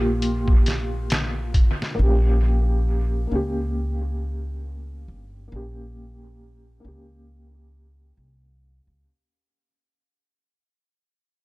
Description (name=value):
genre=trip hop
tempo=68 BPM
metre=4/4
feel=swing 58% on 16ths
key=unclear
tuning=A4 = 442 Hz
part: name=felt-muted upright piano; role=accompaniment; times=0.0-9.1 s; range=Bb3 to G4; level=-28 LUFS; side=equal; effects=tremolo, low-pass filter, tape echo
part: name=upright bass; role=bass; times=0.0-9.0 s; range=G1 to Db2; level=-23 LUFS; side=equal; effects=none
part: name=trip hop sampler-style drum kit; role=drums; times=0.2-2.0 s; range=hi-hat, kick drum, snare drum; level=-21 LUFS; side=equal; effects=small room ambience, analog delay
room=little or no reverb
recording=echo-heavy mix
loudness=-20 LUFS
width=side -22 dB against mid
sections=0.0-9.0 A section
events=fade-out 0.0-9.0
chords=0.0 Gm7; 2.0 Bbm6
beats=0.22 1.10 | 1.98 2.87 3.75 4.63 | 5.51 6.39 7.28 8.16